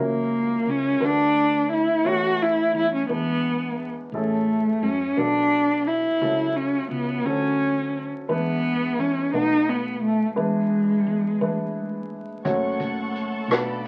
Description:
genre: acoustic folk-pop ballad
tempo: 58 BPM (dotted quarters)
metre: 6/8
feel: straight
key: unclear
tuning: A4 = 439 Hz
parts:
  - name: dark cello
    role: melody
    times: 0.0-13.9 s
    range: G#3 to F#4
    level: -24 LUFS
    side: equal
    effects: none
  - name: warm upright piano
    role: accompaniment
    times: 0.0-13.9 s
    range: F#1 to C#5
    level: -31 LUFS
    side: equal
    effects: none
  - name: woody fretless electric bass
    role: bass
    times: 0.0-13.9 s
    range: A1 to E3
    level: -38 LUFS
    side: equal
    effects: none
  - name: dark chamber string section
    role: sustained chords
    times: 12.4-13.9 s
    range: A4 to C#6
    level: -35 LUFS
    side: equal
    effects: none
  - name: vintage brush drum kit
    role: drums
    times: 12.5-13.9 s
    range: hi-hat, kick drum, rim click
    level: -30 LUFS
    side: equal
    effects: none
room: moderate studio reverb, RT60 0.5 s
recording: very old 78 rpm record, vinyl crackle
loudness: -23 LUFS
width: mono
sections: 0.0-12.5 A section; 12.5-13.9 B section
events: none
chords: 0.0 F#7/C#; 1.0 Bm7/D; 2.1 A/E; 3.1 E7; 4.1 Amaj7; 5.2 Bm7; 6.2 F#m7/C#; 7.3 Dmaj7; 8.3 E7; 9.3 B7; 10.4 E7; 12.5 F#m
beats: 1.02 | 2.06 3.10 | 4.13 5.17 | 6.21 7.25 | 8.29 9.33 | 10.37 11.41 | 12.46 13.50

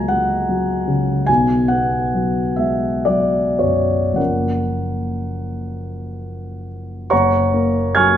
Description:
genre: classical, impressionist solo piano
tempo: 35-52 BPM (dotted quarters)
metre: 6/8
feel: rubato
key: F# major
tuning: A4 = 440 Hz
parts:
  - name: warm concert grand piano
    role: solo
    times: 0.0-8.2 s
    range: F#1 to G#6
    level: -16 LUFS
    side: equal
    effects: none
room: wet recital hall reverb, RT60 1.4 s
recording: none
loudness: -16 LUFS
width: side -10 dB against mid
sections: 0.0-7.1 A section; 7.1-8.2 A section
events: none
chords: 0.0 F#add9/C#; 1.3 B5; 4.2 F#maj7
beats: 0.09 | 1.28 2.57 | 4.18 5.71 | 7.11

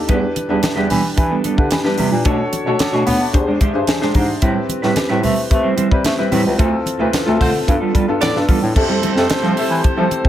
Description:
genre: polished 1980s jazz-funk pop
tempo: 111 BPM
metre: 4/4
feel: straight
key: unclear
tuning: A4 = 441 Hz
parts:
  - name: warm concert grand piano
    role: accompaniment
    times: 0.0-10.3 s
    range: B3 to D6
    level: -20 LUFS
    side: left 2 dB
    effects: wide subtle chorus
  - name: mellow electric guitar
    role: riff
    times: 0.1-10.3 s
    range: G3 to C#5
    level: -21 LUFS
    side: right 4 dB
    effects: wide subtle chorus
  - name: breathy bass clarinet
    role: bass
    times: 0.1-10.3 s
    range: Db2 to B3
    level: -20 LUFS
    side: equal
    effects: none
  - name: tight funk drum kit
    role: drums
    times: 0.1-10.3 s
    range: crash cymbal, hi-hat, kick drum, snare drum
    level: -18 LUFS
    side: equal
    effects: none
  - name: congas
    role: percussion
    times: 0.4-10.2 s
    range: none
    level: -28 LUFS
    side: left 2 dB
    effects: none
  - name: clear horn section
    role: second line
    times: 7.4-10.3 s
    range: A3 to D5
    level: -24 LUFS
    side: right 2 dB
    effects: none
room: light reverb, small room ambience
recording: none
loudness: -14 LUFS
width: side -11 dB against mid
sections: 0.0-8.8 A section; 8.8-10.3 B section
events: grand piano fill 3.3-4.4; band accent 6.6-8.8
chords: 0.1 Em7; 2.3 Bm9; 3.3 E7alt; 4.4 Am9; 6.6 Dm7; 7.7 G9; 8.8 Fmaj9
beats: | 0.09 0.63 1.17 1.71 | 2.26 2.80 3.34 3.88 | 4.42 4.96 5.51 6.05 | 6.59 7.13 7.67 8.21 | 8.76 9.30 9.84

